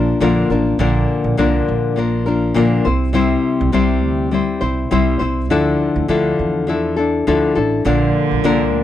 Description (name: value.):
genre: acoustic pop.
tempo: 102 BPM.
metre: 4/4.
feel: swing 55% on 16ths.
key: unclear.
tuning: A4 = 440 Hz.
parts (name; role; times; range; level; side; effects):
nylon-string guitar; accompaniment; 0.0-8.8 s; Bb2 to C5; -16 LUFS; left 4 dB; none.
upright bass; bass; 0.0-8.8 s; A1 to E2; -20 LUFS; right 3 dB; none.
rich cello; second line; 7.8-8.8 s; D3; -22 LUFS; right 12 dB; none.
room: light reverb.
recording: dry, close 1970s-style studio recording.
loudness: -14 LUFS.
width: side -11 dB against mid.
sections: 0.0-8.8 A section.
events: none.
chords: 0.0 Bb; 2.9 C; 5.5 Dmadd9; 7.9 Bb.